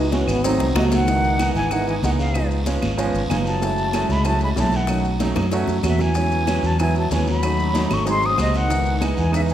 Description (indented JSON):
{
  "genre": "Afro-Cuban jazz",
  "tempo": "189 BPM",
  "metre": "4/4",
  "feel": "straight",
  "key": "C# minor",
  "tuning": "A4 = 440 Hz",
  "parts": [
    { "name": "trombone with bucket mute", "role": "second line", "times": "0.0-9.5 s", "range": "B2 to D#4", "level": "-27 LUFS", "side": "left 2 dB", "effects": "none" },
    { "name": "warm baby grand piano", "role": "accompaniment", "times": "0.0-9.5 s", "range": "E3 to F#4", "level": "-24 LUFS", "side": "right 3 dB", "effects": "none" },
    { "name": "fingered electric bass", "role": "bass", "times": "0.0-9.5 s", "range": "F#1 to F#2", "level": "-22 LUFS", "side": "equal", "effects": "none" },
    { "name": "bongos", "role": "percussion", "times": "0.1-9.5 s", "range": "none", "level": "-33 LUFS", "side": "left 5 dB", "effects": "none" },
    { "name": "congas", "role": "percussion", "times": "0.1-9.5 s", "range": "none", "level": "-29 LUFS", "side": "equal", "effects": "none" },
    { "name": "guiro", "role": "percussion", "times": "0.1-9.5 s", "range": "none", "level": "-35 LUFS", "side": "right 1 dB", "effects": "none" },
    { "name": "maracas", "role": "percussion", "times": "0.1-9.5 s", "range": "none", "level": "-37 LUFS", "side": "left 4 dB", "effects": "none" },
    { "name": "claves", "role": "percussion", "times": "0.3-9.5 s", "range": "none", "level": "-37 LUFS", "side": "right 2 dB", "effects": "none" },
    { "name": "concert flute", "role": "melody", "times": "0.8-9.5 s", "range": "D#5 to D#6", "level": "-24 LUFS", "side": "equal", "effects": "none" }
  ],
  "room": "moderate scoring stage reverb, RT60 1.7 s",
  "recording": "recorded in a church or concert hall",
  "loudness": "-18 LUFS",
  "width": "side -11 dB against mid",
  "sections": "0.0-1.1 A section; 1.1-9.5 B section",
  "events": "trombone solo 0.0-1.1; drum fill 0.6-1.1, 5.4-6.2",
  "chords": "0.4 G#7b9; 1.1 C#m9; 2.3 C#7; 3.6 F#m7; 4.9 B7; 6.2 E69; 7.4 D#m7b5; 8.1 G#7; 8.7 C#m9"
}